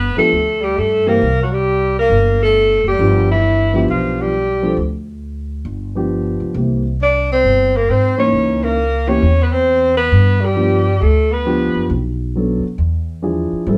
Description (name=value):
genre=jazz, small-group swing and bop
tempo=135 BPM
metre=4/4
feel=swing 66% on 8ths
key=G mixolydian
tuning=A4 = 435 Hz
part: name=warm alto saxophone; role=melody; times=0.0-11.9 s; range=E4 to D5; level=-19 LUFS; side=equal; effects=none
part: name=breathy tenor saxophone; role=second line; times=0.0-11.9 s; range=E3 to D4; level=-23 LUFS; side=equal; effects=none
part: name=upright bass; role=bass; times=0.0-13.8 s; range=F#1 to Ab2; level=-20 LUFS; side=equal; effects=none
part: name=dark grand piano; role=accompaniment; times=0.2-13.8 s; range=E3 to A4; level=-21 LUFS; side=equal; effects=none
room=wet studio reverb, RT60 0.6 s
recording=heard from further back in the room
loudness=-16 LUFS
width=mono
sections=0.0-13.8 A section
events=none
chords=0.0 G; 1.2 C5; 3.0 G7; 4.8 N.C.; 5.7 G7; 6.6 C7; 8.3 C#m6; 10.1 G7; 11.9 Bm7; 12.8 E7b9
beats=0.32 0.77 | 1.21 1.66 2.10 2.55 | 2.99 3.44 3.88 4.33 | 4.77 5.22 5.66 6.11 | 6.55 7.00 7.44 7.89 | 8.33 8.78 9.22 9.67 | 10.11 10.56 11.00 11.45 | 11.89 12.34 12.78 13.23 | 13.67